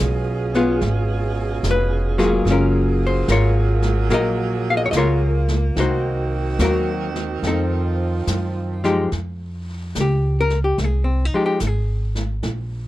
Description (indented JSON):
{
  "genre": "jazz ballad",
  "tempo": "73 BPM",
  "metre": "4/4",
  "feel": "swing 67% on 8ths",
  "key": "F minor from 9.1 s",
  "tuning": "A4 = 440 Hz",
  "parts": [
    { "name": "archtop guitar, miked and amplified", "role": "accompaniment", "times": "0.0-12.9 s", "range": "F3 to F5", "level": "-21 LUFS", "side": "left 2 dB", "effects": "none" },
    { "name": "clear saxophone section", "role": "sustained chords", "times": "0.0-9.1 s", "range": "Cb3 to Ab4", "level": "-26 LUFS", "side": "right 5 dB", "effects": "none" },
    { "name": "upright bass", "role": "bass", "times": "0.0-12.9 s", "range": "F1 to Gb2", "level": "-21 LUFS", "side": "equal", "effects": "none" },
    { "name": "jazz brush drum kit", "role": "drums", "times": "0.5-12.9 s", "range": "brushed snare drum, hi-hat, snare drum", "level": "-30 LUFS", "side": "left 1 dB", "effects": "none" }
  ],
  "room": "light reverb",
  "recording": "none",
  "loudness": "-18 LUFS",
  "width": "side -15 dB against mid",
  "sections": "0.0-9.1 A section; 9.1-12.9 B section",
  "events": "none",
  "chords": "0.0 Db7; 2.5 Gbmaj9; 5.8 Cm7b5; 7.4 F7; 9.1 Fmadd9"
}